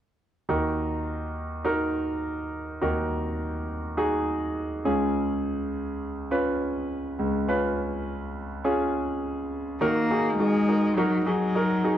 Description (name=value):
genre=pop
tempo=103 BPM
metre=4/4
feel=straight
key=Eb minor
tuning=A4 = 440 Hz
part: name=clear concert grand piano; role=accompaniment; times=0.5-12.0 s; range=Db2 to Cb5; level=-25 LUFS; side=right 1 dB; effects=none
part: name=warm cello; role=melody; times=9.8-12.0 s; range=Gb3 to Bb3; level=-24 LUFS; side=left 2 dB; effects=plate reverb
room=wet large studio reverb, RT60 0.9 s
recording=worn, warbling old tape, cassette tape, warbly pitch drift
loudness=-24 LUFS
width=side -10 dB against mid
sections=0.5-9.8 A section; 9.8-12.0 B section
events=none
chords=0.5 Ebm; 4.9 Db; 9.8 Ebm